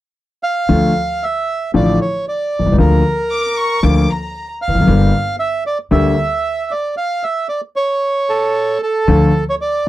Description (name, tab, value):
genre	tango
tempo	114 BPM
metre	4/4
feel	rubato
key	D harmonic minor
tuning	A4 = 440 Hz
part	bandoneon	melody	0.4-9.9 s	A4 to F5	-17 LUFS	right 2 dB	none
part	clear concert grand piano	accompaniment	0.7-9.3 s	G1 to G4	-14 LUFS	left 2 dB	none
part	upright bass	bass	0.7-9.3 s	E1 to D2	-16 LUFS	right 1 dB	none
part	warm chamber violin section	second line	3.3-4.5 s	Bb5 to D6	-21 LUFS	left 1 dB	none
room	light reverb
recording	dry, close 1970s-style studio recording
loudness	-14 LUFS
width	side -15 dB against mid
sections	0.7-9.1 A section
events	stop 7.0-9.1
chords	0.0 N.C.; 0.7 Dm; 2.8 Bb/D; 4.9 Gm; 7.0 N.C.; 9.1 Dm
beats	0.17 | 0.69 1.22 1.75 2.27 | 2.79 3.32 3.84 4.36 | 4.88 5.40 5.92 6.44 | 6.96 7.49 8.02 8.55 | 9.08 9.61